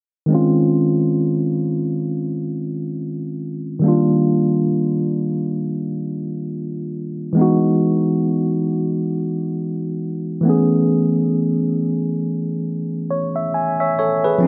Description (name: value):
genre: R&B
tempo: 68 BPM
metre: 4/4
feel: swing 58% on 16ths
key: unclear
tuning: A4 = 440 Hz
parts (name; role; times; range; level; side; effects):
- tine electric piano; accompaniment; 0.3-14.5 s; Eb3 to G#5; -20 LUFS; equal; none
room: light reverb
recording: low-pass filter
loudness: -20 LUFS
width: mono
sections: 0.3-14.4 A section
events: filter sweep 0.3-14.4; tine electric piano fill 12.7-14.4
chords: 0.3 Dbmaj9; 3.8 Ebmaj9; 7.4 Emaj9; 10.4 Amaj9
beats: | 0.30 1.18 2.06 2.94 | 3.83 4.71 5.59 6.47 | 7.36 8.24 9.12 10.00 | 10.89 11.77 12.65 13.53 | 14.42